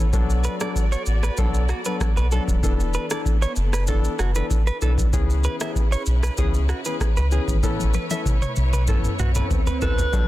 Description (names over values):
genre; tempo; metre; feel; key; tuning
afrobeats; 96 BPM; 4/4; straight; A major; A4 = 435 Hz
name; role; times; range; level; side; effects
warm concert grand piano; accompaniment; 0.0-10.3 s; E3 to A4; -29 LUFS; left 5 dB; none
warm studio string section; sustained chords; 0.0-10.3 s; C#3 to D5; -33 LUFS; left 1 dB; none
warm sub bass; bass; 0.0-10.3 s; D1 to C#2; -21 LUFS; equal; none
booming analog drum machine; drums; 0.1-10.3 s; kick drum, rim click, shaker, toms; -22 LUFS; equal; soft clipping on snare
direct-recorded clean electric guitar; riff; 0.4-9.9 s; F#4 to E5; -32 LUFS; right 5 dB; digital delay
swell and impact; sound effects; 8.6-10.3 s; none; -34 LUFS; equal; none
breathy alto saxophone; melody; 9.8-10.3 s; B4; -25 LUFS; right 2 dB; none
room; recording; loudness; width
digital ambience; dense, heavily limited modern master; -19 LUFS; side -16 dB against mid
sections
0.0-10.1 A section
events
drum fill 7.6-10.1; swell 8.6-10.1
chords
0.1 Bm7; 2.6 E7sus4; 5.1 C#m7; 7.6 Aadd9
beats
| 0.13 0.76 1.38 2.01 | 2.63 3.26 3.88 4.51 | 5.13 5.76 6.38 7.01 | 7.63 8.26 8.88 9.51 | 10.13